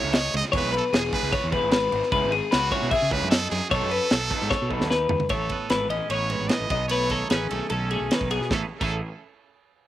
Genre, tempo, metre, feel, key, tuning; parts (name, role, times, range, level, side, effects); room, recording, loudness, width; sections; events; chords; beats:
math rock and midwest emo; 150 BPM; 4/4; straight; A lydian; A4 = 440 Hz
brilliant trumpet; melody; 0.0-9.0 s; F#4 to D#5; -29 LUFS; right 4 dB
twelve-string electric guitar; arpeggios; 0.0-9.0 s; G#4 to E5; -26 LUFS; left 4 dB
raw garage guitar; riff; 0.0-5.1 s; F#3 to A4; -33 LUFS; right 3 dB; overdrive, slapback echo
fuzz fingered electric bass; bass; 0.0-9.0 s; E1 to C#3; -30 LUFS; right 1 dB; overdrive
modern studio drum kit; drums; 0.1-8.9 s; crash cymbal, kick drum, ride cymbal, snare drum, toms; -27 LUFS; right 1 dB
twelve-string electric guitar; accompaniment; 5.3-9.0 s; G#2 to G#4; -32 LUFS; right 8 dB; spring reverb
little or no reverb; recorded outdoors, with no room sound; -22 LUFS; side -13 dB against mid
0.0-5.3 A section; 5.3-8.5 B section; 8.5-9.9 C section
drum fill 4.5-5.3
0.0 A(#11); 0.5 E; 2.1 C#m9; 3.7 Bsus2; 5.3 Amaj9; 6.7 B13; 8.5 Amaj7
0.13 | 0.53 0.93 1.33 1.73 | 2.12 2.52 2.92 3.32 | 3.72 4.12 4.51 4.91 | 5.31 5.71 6.11 6.51 | 6.91 7.31 7.71 8.11 | 8.52 8.92